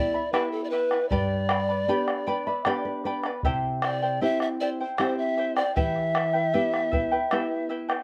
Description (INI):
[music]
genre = andean folk, Andean ensemble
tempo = 77 BPM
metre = 3/4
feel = straight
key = E minor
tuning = A4 = 438 Hz
[part]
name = polished pan flute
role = melody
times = 0.0-7.7 s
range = A4 to E5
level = -29 LUFS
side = equal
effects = none
[part]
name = charango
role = accompaniment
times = 0.0-8.0 s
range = E4 to B5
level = -32 LUFS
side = equal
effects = none
[part]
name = nylon-string guitar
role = accompaniment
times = 0.0-7.9 s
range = G2 to G5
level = -33 LUFS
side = equal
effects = none
[part]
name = bombo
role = percussion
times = 0.3-8.0 s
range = none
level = -32 LUFS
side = equal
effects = none
[sound]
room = light reverb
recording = none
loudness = -26 LUFS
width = mono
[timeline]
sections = 0.0-8.0 A section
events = nylon-string guitar fill 1.9-3.4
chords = 0.0 Em; 1.1 G; 3.4 C; 5.8 Em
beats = 0.33 | 1.11 1.88 2.66 | 3.43 4.21 4.98 | 5.76 6.54 7.31